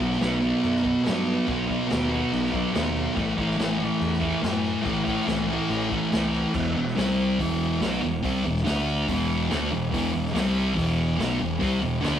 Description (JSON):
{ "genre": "garage rock duo or trio", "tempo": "142 BPM", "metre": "4/4", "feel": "straight", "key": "E minor from 6.5 s", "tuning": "A4 = 437 Hz", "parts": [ { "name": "thick fuzz guitar", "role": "riff", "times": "0.0-12.2 s", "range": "E2 to D4", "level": "-23 LUFS", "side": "equal", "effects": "distortion" }, { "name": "growling picked electric bass", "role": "bass", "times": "0.0-12.2 s", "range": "E1 to G2", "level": "-32 LUFS", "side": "equal", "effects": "overdrive" }, { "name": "vintage drum kit", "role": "drums", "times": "0.0-12.1 s", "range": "crash cymbal, hi-hat, kick drum, snare drum", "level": "-32 LUFS", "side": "equal", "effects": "none" } ], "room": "moderate stone room reverb, RT60 1.1 s", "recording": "rough rehearsal-room recording, warm saturation", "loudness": "-22 LUFS", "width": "side -9 dB against mid", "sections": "0.0-6.5 A section; 6.5-12.2 B section", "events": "none", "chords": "0.0 B; 3.2 Am; 6.5 E5; 7.0 C5; 7.4 Em; 8.7 D5; 9.1 E5; 10.3 C5; 10.8 Em" }